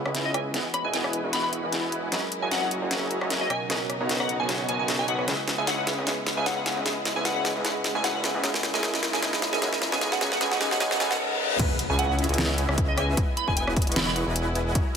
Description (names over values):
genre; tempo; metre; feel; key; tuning
future bass; 152 BPM; 4/4; swing 54% on 16ths, half-time; unclear; A4 = 443 Hz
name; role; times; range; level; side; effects
tine electric piano; accompaniment; 0.0-11.6 s; B2 to D#6; -33 LUFS; right 3 dB; medium stereo tremolo, sidechain pumping, ping-pong delay
rich studio string section; sustained chords; 0.0-15.0 s; C#3 to A#4; -38 LUFS; left 2 dB; none
dense compressed supersaw; riff; 0.0-14.8 s; B3 to C#6; -32 LUFS; equal; sidechain pumping, low-pass filter, ping-pong delay
fat analog bass; bass; 0.0-14.8 s; E1 to F#2; -31 LUFS; equal; sidechain pumping, high-pass filter
pop drum kit; drums; 0.1-14.8 s; crash cymbal, hi-hat, rim click, snare drum, toms; -28 LUFS; left 1 dB; overdrive, high-pass filter on snare, high-pass filter on hats, high-pass filter on toms, high-pass filter on cymbals, high-pass filter on room
glassy wavetable pluck; melody; 0.3-14.1 s; D#5 to B5; -30 LUFS; equal; chorus, sidechain pumping, tape echo
riser, reverse cymbal and impact; sound effects; 7.7-13.2 s; none; -34 LUFS; left 2 dB; none
electronic kick drum; drums; 11.6-14.8 s; none; -25 LUFS; equal; overdrive
room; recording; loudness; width
moderate huge ambient reverb, RT60 4.0 s; high-pass filter; -23 LUFS; side -7 dB against mid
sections
0.0-11.6 A section; 11.6-15.0 B section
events
build-up 0.0-11.6; drum fill 0.0-11.2, 11.3; filter sweep on supersaw synth 0.0-11.6; reverse cymbal 10.8-11.6; drop 11.6-15.0; impact 11.6-13.2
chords
0.0 C#m7; 0.5 Emaj7; 2.1 F#13; 3.5 Bmaj9; 5.3 C#m7; 6.9 Emaj7; 8.4 F#13; 9.8 Bmaj9; 11.6 C#m7; 13.2 Emaj7